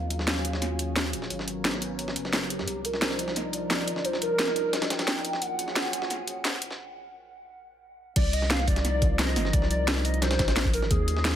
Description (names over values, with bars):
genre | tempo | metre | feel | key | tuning
liquid drum and bass | 175 BPM | 4/4 | straight | C minor | A4 = 440 Hz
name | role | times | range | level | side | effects
hollow clarinet-like synth lead | melody | 0.0-6.1, 8.2-11.4 s | G4 to G5 | -31 LUFS | equal | ensemble chorus, dub echo
lush unison pad | sustained chords | 0.0-11.4 s | F3 to Bb4 | -34 LUFS | equal | chorus
saturated sub bass | bass | 0.0-11.4 s | Eb1 to Ab2 | -31 LUFS | equal | none
drum and bass drum kit | drums | 0.1-11.3 s | crash cymbal, hi-hat, snare drum | -29 LUFS | equal | overdrive
dusty soul sampler-style drum kit | drums | 0.1-11.4 s | hi-hat, snare drum | -32 LUFS | equal | high-pass filter on hats, high-pass filter on snare
electronic kick drum | drums | 8.2-11.0 s | none | -26 LUFS | equal | overdrive
room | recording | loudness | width
light reverb | high-pass filter | -24 LUFS | side -10 dB against mid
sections
0.0-8.2 A section; 8.2-11.4 B section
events
build-up 0.0-8.2; filter sweep on soft synth lead 0.0-8.2; filter sweep 0.0-8.2; break 6.8-8.2; drop 8.2-11.4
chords
0.0 Ebm11; 1.3 Abm11; 2.7 Cm11; 5.4 Ebm11; 6.8 N.C.; 8.2 Cm11